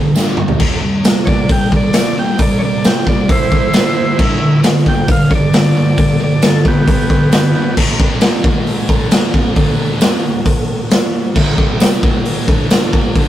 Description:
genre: garage rock duo or trio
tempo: 134 BPM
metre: 4/4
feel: straight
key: unclear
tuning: A4 = 440 Hz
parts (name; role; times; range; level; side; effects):
- thick fuzz guitar; riff; 0.0-13.3 s; D2 to C4; -16 LUFS; equal; distortion
- raw garage drum kit; drums; 0.2-13.3 s; crash cymbal, hi-hat, kick drum, snare drum, toms; -12 LUFS; equal; none
- tambourine; percussion; 0.2-12.8 s; none; -30 LUFS; right 6 dB; none
- combo organ; melody; 1.3-7.8 s; B3 to G5; -19 LUFS; right 2 dB; none
room: light reverb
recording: rough rehearsal-room recording, warm saturation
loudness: -11 LUFS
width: side -12 dB against mid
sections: 0.0-7.8 A section; 7.8-13.3 B section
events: transistor combo organ solo 0.0-7.8; drum fill 0.2-0.6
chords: 0.0 G5; 0.6 C; 3.7 G5; 7.8 D5; 8.0 C5; 8.4 G#5; 8.9 D5; 11.6 C5; 12.0 G#5; 12.5 D5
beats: 0.16 | 0.60 1.05 1.50 1.95 | 2.40 2.85 3.29 3.74 | 4.19 4.64 5.08 5.53 | 5.98 6.43 6.88 7.33 | 7.78 8.22 8.67 9.12 | 9.57 10.02 10.46 10.91 | 11.36 11.81 12.26 12.71 | 13.16

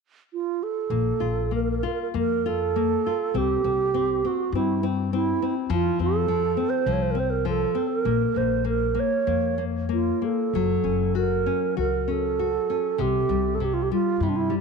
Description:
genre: fado-style ballad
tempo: 94-105 BPM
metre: 4/4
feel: rubato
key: Bb harmonic minor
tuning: A4 = 437 Hz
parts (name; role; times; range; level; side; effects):
- mellow hollow alto flute; melody; 0.3-14.5 s; D4 to Db5; -25 LUFS; right 9 dB; none
- nylon-string guitar; accompaniment; 0.9-14.6 s; C3 to Gb4; -27 LUFS; left 14 dB; none
- upright bass; bass; 0.9-14.6 s; Gb1 to G2; -28 LUFS; left 3 dB; none
room: moderate plate reverb, RT60 3.5 s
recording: 1960s-style stereo with parts hard left and right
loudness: -22 LUFS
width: side -5 dB against mid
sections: 0.9-14.6 A section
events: none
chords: 0.0 N.C.; 0.9 Bb5; 3.4 C5; 5.7 F; 8.1 Bbm; 10.5 Gb; 13.0 C5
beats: 0.30 | 0.90 1.52 2.14 2.75 | 3.35 3.95 4.54 5.13 | 5.71 6.29 6.87 7.46 | 8.05 8.66 9.28 9.91 | 10.54 11.16 11.78 12.39 | 12.99 13.61 14.21

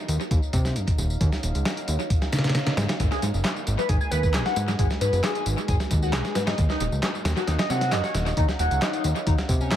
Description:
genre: breakbeat, breaks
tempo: 134 BPM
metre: 4/4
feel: straight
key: unclear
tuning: A4 = 438 Hz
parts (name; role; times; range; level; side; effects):
- deep dark ambient pad; sustained chords; 0.0-9.8 s; G#3 to F#5; -35 LUFS; right 1 dB; chorus, built-in reverb, sidechain pumping
- fat analog bass; bass; 0.1-9.8 s; D#1 to B#2; -25 LUFS; equal; none
- dusty soul sampler-style drum kit; drums; 0.1-9.8 s; hi-hat, kick drum, snare drum; -25 LUFS; equal; analog delay
- electronic tambourine and handclaps; drums; 0.1-9.8 s; none; -35 LUFS; equal; analog delay
- overdriven synth lead; riff; 3.1-9.8 s; C#4 to G#5; -28 LUFS; left 1 dB; phaser, wide subtle chorus, analog delay
room: light reverb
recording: echo-heavy mix, vinyl crackle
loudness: -22 LUFS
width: side -11 dB against mid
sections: 0.0-9.8 A section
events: none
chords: 0.0 D#m9; 3.0 G#m9; 6.6 D#m9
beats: 0.31 0.76 | 1.21 1.66 2.10 2.55 | 3.00 3.45 3.89 4.34 | 4.79 5.24 5.68 6.13 | 6.58 7.03 7.47 7.92 | 8.37 8.82 9.27 9.71

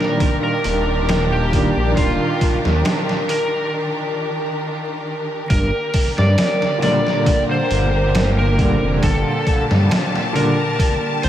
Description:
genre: trip hop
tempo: 68 BPM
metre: 4/4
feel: swing 53% on 16ths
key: G minor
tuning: A4 = 440 Hz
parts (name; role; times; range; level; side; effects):
- overdriven slide guitar; melody; 0.0-11.3 s; F4 to D5; -22 LUFS; equal; vintage 12-bit sampler grit, dub echo
- warm upright piano; accompaniment; 0.0-10.6 s; Bb2 to D4; -22 LUFS; equal; tremolo, tape echo
- rich symphonic string section; sustained chords; 0.0-11.3 s; D3 to A5; -23 LUFS; left 1 dB; vintage 12-bit sampler grit
- trip hop sampler-style drum kit; drums; 0.0-11.3 s; hi-hat, kick drum, snare drum; -20 LUFS; equal; overdrive
- dark detuned saw bass; bass; 0.6-11.3 s; Eb1 to G2; -18 LUFS; equal; none
room: moderate huge ambient reverb, RT60 3.9 s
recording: dreamy mix soaked in reverb, vinyl crackle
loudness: -16 LUFS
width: side -11 dB against mid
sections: 0.0-5.5 A section; 5.5-11.3 B section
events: break 3.7-5.5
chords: 0.0 Ebmaj7; 5.5 Gm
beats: 0.20 1.09 | 1.97 2.85 3.73 4.62 | 5.50 6.38 7.26 8.15 | 9.03 9.91 10.79

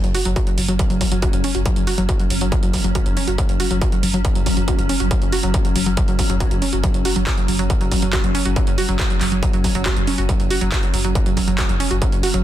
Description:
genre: driving peak-time techno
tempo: 139 BPM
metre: 4/4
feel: straight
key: unclear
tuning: A4 = 441 Hz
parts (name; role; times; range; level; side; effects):
- warbly dusty pluck; riff; 0.0-12.4 s; F#3 to F#4; -23 LUFS; right 2 dB; chorus, tube saturation, sidechain pumping, dub echo
- saturated sub bass; bass; 0.0-12.4 s; F#1; -24 LUFS; equal; tube saturation, sidechain pumping, low-pass filter
- swarming drone; drone; 0.5-12.4 s; F#3 to C#4; -26 LUFS; left 1 dB; built-in reverb, sidechain pumping
- punchy analog drum machine; drums; 0.0-12.4 s; handclaps, hi-hat; -26 LUFS; right 2 dB; overdrive, sidechain pumping on hats
- electronic kick drum; drums; 0.4-12.1 s; none; -20 LUFS; equal; distortion
room: little or no reverb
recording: dense, heavily limited modern master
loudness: -16 LUFS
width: side -12 dB against mid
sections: 0.0-12.4 A section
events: none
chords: 0.0 F#5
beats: 0.36 0.79 1.23 | 1.66 2.09 2.52 2.95 | 3.38 3.81 4.25 4.68 | 5.11 5.54 5.97 6.41 | 6.84 7.27 7.70 8.13 | 8.56 8.99 9.43 9.86 | 10.29 10.72 11.15 11.59 | 12.02

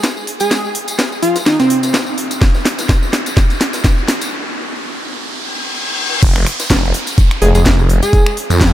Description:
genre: bass house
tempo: 126 BPM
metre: 4/4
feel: swing 56% on 16ths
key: F minor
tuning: A4 = 440 Hz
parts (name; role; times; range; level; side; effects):
- breakbeat sampler-style drum kit; drums; 0.0-8.7 s; hi-hat, snare drum; -29 LUFS; equal; none
- house drum kit; drums; 0.0-8.7 s; crash cymbal, finger snaps, hi-hat, snare drum; -19 LUFS; equal; none
- tambourine; percussion; 0.0-8.7 s; none; -28 LUFS; left 3 dB; none
- riser, reverse cymbal and downlifter; sound effects; 0.9-8.7 s; none; -24 LUFS; left 1 dB; none
- plucky unison lead; melody; 0.4-1.9, 7.4-8.4 s; C4 to Ab4; -18 LUFS; right 1 dB; tape echo
- electronic kick drum; drums; 2.4-8.7 s; none; -12 LUFS; equal; none
- phased detuned saw bass; bass; 6.2-8.7 s; F1 to F2; -12 LUFS; equal; phaser, tube saturation, sidechain pumping
room: light reverb, digital ambience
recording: none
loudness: -12 LUFS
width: side -13 dB against mid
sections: 0.0-6.2 A section; 6.2-8.7 B section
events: build-up 0.0-6.2; drum fill 0.0-4.3; riser 0.9-6.2; break 4.3-6.2; reverse cymbal 5.3-6.2; drop 6.2-8.7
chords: 0.0 N.C.; 6.2 Fm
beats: 0.04 | 0.51 0.99 1.46 1.94 | 2.42 2.89 3.37 3.85 | 4.32 4.80 5.27 5.75 | 6.23 6.70 7.18 7.66 | 8.13 8.61

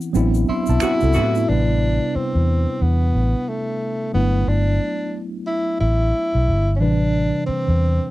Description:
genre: R&B, neo-soul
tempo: 90 BPM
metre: 4/4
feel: swing 60% on 16ths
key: A dorian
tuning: A4 = 441 Hz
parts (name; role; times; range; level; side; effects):
- tine electric piano; accompaniment; 0.0-8.1 s; C3 to C6; -23 LUFS; right 1 dB; overdrive, fast stereo tremolo
- egg shaker and finger snaps; percussion; 0.0-1.5 s; none; -32 LUFS; right 5 dB; none
- vintage muted fingered electric bass; bass; 0.2-8.0 s; G1 to A2; -18 LUFS; equal; none
- breathy tenor saxophone; melody; 0.5-8.1 s; A3 to E4; -23 LUFS; equal; none
- mellow saxophone section; stabs; 0.8-1.4 s; C3 to F#4; -27 LUFS; left 2 dB; none
room: light reverb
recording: dry, close 1970s-style studio recording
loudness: -17 LUFS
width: side -17 dB against mid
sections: 0.0-1.5 A section; 1.5-8.1 B section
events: band accent 0.0-1.5; tine electric piano fill 0.1-1.5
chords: 0.1 Am69; 1.5 Am9; 4.1 Gmaj9; 6.8 Am9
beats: 0.14 0.81 | 1.47 2.14 2.81 3.47 | 4.14 4.81 5.47 6.14 | 6.81 7.47

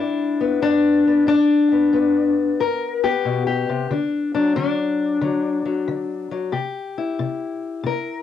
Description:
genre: acoustic country blues, solo or duo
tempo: 91 BPM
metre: 4/4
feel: swing 67% on 8ths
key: G major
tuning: A4 = 440 Hz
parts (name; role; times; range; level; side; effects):
- fingerpicked steel-string acoustic guitar; solo; 0.0-8.2 s; G2 to Bb4; -18 LUFS; left 4 dB; cassette tape
room: wet studio reverb, RT60 0.6 s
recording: home recording on cassette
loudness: -18 LUFS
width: side -10 dB against mid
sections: 0.0-8.2 A section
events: none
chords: 0.0 G; 3.9 D; 6.5 C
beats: 0.61 | 1.27 1.93 2.59 3.24 | 3.90 4.56 5.22 5.87 | 6.53 7.19 7.84

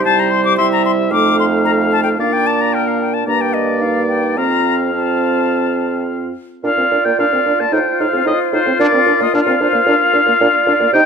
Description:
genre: quick classical-period movement for wind quintet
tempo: 110 BPM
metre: 4/4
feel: uneven beats, rubato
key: Bb major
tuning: A4 = 439 Hz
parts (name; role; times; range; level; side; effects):
- bright concert flute; melody; 0.0-11.1 s; F4 to D6; -19 LUFS; left 8 dB; none
- clear oboe; second line; 0.0-11.1 s; Bb4 to A5; -17 LUFS; left 3 dB; none
- clear French horn; accompaniment; 0.0-11.0 s; G3 to Eb4; -20 LUFS; right 1 dB; none
- dark clarinet; accompaniment; 0.0-11.1 s; D4 to Eb5; -20 LUFS; right 12 dB; none
- mellow bassoon; bass; 0.0-11.0 s; F2 to C3; -21 LUFS; right 3 dB; none
room: moderate recital hall reverb, RT60 1.3 s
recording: close, detailed microphones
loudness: -12 LUFS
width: side -6 dB against mid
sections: 0.0-6.6 A section; 6.6-11.1 B section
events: none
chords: 0.1 C; 1.1 F7; 2.2 Bb; 3.3 Gm; 4.4 F; 6.6 Bb; 7.7 F7/A; 8.8 Bb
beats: | 0.05 0.59 1.12 1.66 | 2.19 2.74 3.27 3.82 | 4.38 4.94 5.51 6.07 | 6.64 7.19 7.73 8.27 | 8.80 9.34 9.88 10.41 | 10.95

